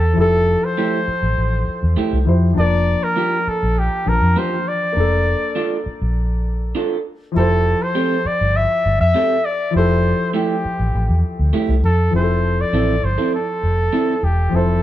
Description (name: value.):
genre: soul.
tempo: 100 BPM.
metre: 4/4.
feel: straight.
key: F major.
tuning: A4 = 440 Hz.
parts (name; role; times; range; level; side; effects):
clear flugelhorn; melody; 0.0-14.8 s; G4 to E5; -20 LUFS; equal; tape echo.
warm baby grand piano; accompaniment; 0.0-14.8 s; F3 to A5; -22 LUFS; left 3 dB; none.
vintage muted fingered electric bass; bass; 0.0-14.8 s; E1 to F2; -18 LUFS; equal; none.
electric guitar through a small old amp; riff; 0.8-14.1 s; A3 to A4; -21 LUFS; right 4 dB; none.
room: moderate studio reverb, RT60 0.6 s.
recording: band playing live in one room.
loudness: -16 LUFS.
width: side -13 dB against mid.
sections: 0.0-12.1 A section; 12.1-14.8 B section.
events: none.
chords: 0.0 Fmaj9; 2.6 Gm7/F; 5.0 Bbmaj7/F; 7.4 Am7/F; 9.7 Fmaj9; 12.1 Fmaj7.